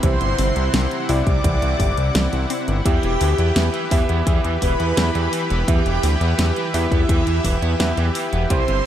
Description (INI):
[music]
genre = synthwave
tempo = 85 BPM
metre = 4/4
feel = straight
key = E minor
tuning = A4 = 441 Hz
[part]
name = mellow synth brass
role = melody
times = 0.0-8.9 s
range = E4 to D5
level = -26 LUFS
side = equal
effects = chorus, tape echo
[part]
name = string machine, violins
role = second line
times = 0.0-8.9 s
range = E5 to D6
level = -32 LUFS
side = equal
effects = ensemble chorus, ping-pong delay
[part]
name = soft supersaw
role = sustained chords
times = 0.0-8.9 s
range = C3 to F#5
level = -27 LUFS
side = left 1 dB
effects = sidechain pumping
[part]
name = wide unison pluck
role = arpeggios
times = 0.0-2.8 s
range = E3 to G4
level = -30 LUFS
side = left 2 dB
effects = none
[part]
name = clear electric grand piano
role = stabs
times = 0.0-8.9 s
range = C3 to E5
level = -27 LUFS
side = right 3 dB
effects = ping-pong delay
[part]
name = fat analog bass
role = bass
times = 0.0-8.8 s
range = E1 to E2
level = -20 LUFS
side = equal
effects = none
[part]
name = electronic kick drum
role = drums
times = 0.0-8.6 s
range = none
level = -20 LUFS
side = equal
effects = studio ambience
[part]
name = pop drum kit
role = drums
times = 0.0-8.8 s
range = hi-hat, snare drum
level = -26 LUFS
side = equal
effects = studio ambience
[part]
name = overdriven electric guitar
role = riff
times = 2.9-8.8 s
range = C3 to B3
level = -30 LUFS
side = right 5 dB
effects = lush chorus, ping-pong delay
[sound]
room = light reverb, digital ambience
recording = none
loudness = -17 LUFS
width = side -10 dB against mid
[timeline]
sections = 0.0-8.9 A section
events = none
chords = 0.0 C; 2.9 Em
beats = | 0.03 0.74 1.45 2.15 | 2.86 3.56 4.27 4.97 | 5.68 6.39 7.09 7.80 | 8.50